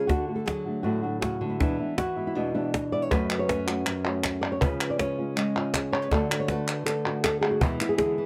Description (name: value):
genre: flamenco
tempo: 160 BPM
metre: 4/4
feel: straight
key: unclear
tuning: A4 = 439 Hz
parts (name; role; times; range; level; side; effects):
- flamenco guitar; melody; 0.0-8.3 s; F#2 to D5; -30 LUFS; equal; none
- flamenco guitar; stabs; 0.0-8.3 s; E2 to F#4; -34 LUFS; equal; none
- cajon; percussion; 0.1-8.2 s; none; -30 LUFS; equal; none
- palmas hand claps; percussion; 3.1-8.0 s; none; -33 LUFS; equal; none
room: light reverb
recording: none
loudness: -27 LUFS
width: mono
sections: 0.0-8.3 A section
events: none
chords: 0.1 D; 1.6 E; 3.1 F#m; 4.6 C#; 6.1 D; 7.6 E